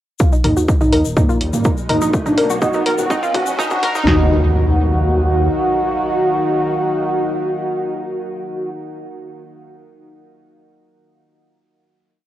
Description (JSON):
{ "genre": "melodic techno", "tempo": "124 BPM", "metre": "4/4", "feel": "straight", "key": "Eb minor", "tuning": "A4 = 439 Hz", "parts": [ { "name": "wide unison lead", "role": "melody", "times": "0.2-8.7 s", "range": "Bb3 to F#4", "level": "-20 LUFS", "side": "equal", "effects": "sidechain pumping, cassette tape, tape echo" }, { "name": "deep dark ambient pad", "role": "sustained chords", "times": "1.8-8.7 s", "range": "Eb4 to F#5", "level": "-26 LUFS", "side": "equal", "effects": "chorus, built-in reverb, sidechain pumping, cassette tape" }, { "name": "bowed-like drone", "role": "drone", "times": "1.1-8.7 s", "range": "Eb3 to Eb4", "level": "-30 LUFS", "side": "equal", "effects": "built-in reverb, sidechain pumping, cassette tape" }, { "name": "techno drum kit", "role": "drums", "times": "0.2-4.2 s", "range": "kick drum, snare drum", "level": "-17 LUFS", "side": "equal", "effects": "cassette tape" }, { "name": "tube shaker", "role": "percussion", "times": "0.2-4.0 s", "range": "none", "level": "-32 LUFS", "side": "left 10 dB", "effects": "none" }, { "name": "riser and impact", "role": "sound effects", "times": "1.4-8.7 s", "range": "none", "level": "-24 LUFS", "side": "left 1 dB", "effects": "none" }, { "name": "analog pluck", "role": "arpeggios", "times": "0.3-4.3 s", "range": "Eb4 to Bb4", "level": "-20 LUFS", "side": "equal", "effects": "chorus, sidechain pumping, cassette tape, tape echo" }, { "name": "dark detuned saw bass", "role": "bass", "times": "0.4-5.5 s", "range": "Eb1 to Eb2", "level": "-18 LUFS", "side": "equal", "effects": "tube saturation, sidechain pumping" }, { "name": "techno drum kit", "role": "drums", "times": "0.4-3.9 s", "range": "hi-hat, toms", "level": "-24 LUFS", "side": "equal", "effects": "cassette tape" } ], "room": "wet studio reverb, RT60 0.5 s", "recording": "home recording on cassette, high-pass filter", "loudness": "-14 LUFS", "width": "side -13 dB against mid", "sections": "0.2-4.1 build; 4.1-7.9 final chord", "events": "build-up 0.2-4.1; filter sweep on synth pluck 0.2-4.1; filter sweep on analog synth lead 0.2-4.1; filter sweep 0.2-4.1; riser 1.4-4.1; drum fill 2.1-4.1", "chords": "0.2 Ebmadd9; 2.1 B; 4.1 Ebmadd9", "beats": "| 0.20 0.68 1.17 1.65 | 2.13 2.62 3.10 3.59 | 4.07 4.55 5.04 5.52 | 6.01 6.49 6.97 7.46" }